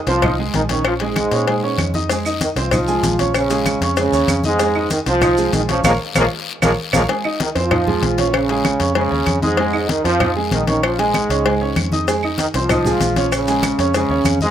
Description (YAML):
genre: latin, salsa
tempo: 192 BPM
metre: 4/4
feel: straight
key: F minor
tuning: A4 = 440 Hz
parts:
  - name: bright upright piano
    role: accompaniment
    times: 0.0-14.5 s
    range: Ab3 to Eb6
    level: -21 LUFS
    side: right 3 dB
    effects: none
  - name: bright trombone section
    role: melody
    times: 0.1-14.5 s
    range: Ab2 to F4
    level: -19 LUFS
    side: right 1 dB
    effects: none
  - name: vintage muted fingered electric bass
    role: bass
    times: 0.1-14.5 s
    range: Bb1 to Bb2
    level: -23 LUFS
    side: equal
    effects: none
  - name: congas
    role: percussion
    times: 0.1-14.5 s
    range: none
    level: -24 LUFS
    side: left 2 dB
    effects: none
  - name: cowbell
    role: percussion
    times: 0.1-14.4 s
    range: none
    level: -24 LUFS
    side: left 7 dB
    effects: none
  - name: guiro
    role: percussion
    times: 0.1-14.5 s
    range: none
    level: -31 LUFS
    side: left 8 dB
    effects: none
  - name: claves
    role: percussion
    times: 0.2-14.4 s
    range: none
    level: -26 LUFS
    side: right 10 dB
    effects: none
  - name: maracas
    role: percussion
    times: 2.1-7.0, 12.1-14.5 s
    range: none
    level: -30 LUFS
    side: right 6 dB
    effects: none
room: light reverb, studio ambience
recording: rough home demo mix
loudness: -15 LUFS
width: side -10 dB against mid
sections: 0.0-7.1 A section; 7.1-14.5 A section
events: drum fill 5.8-7.1; band accent 5.8-7.1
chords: 0.0 Fm7; 0.9 Bbm7; 2.1 Fm7; 3.3 Bbm7; 4.6 Fm7; 5.8 Bbm7; 7.1 Fm7; 8.3 Bbm7; 9.6 Fm7; 10.8 Bbm7; 12.1 Fm7; 13.3 Bbm7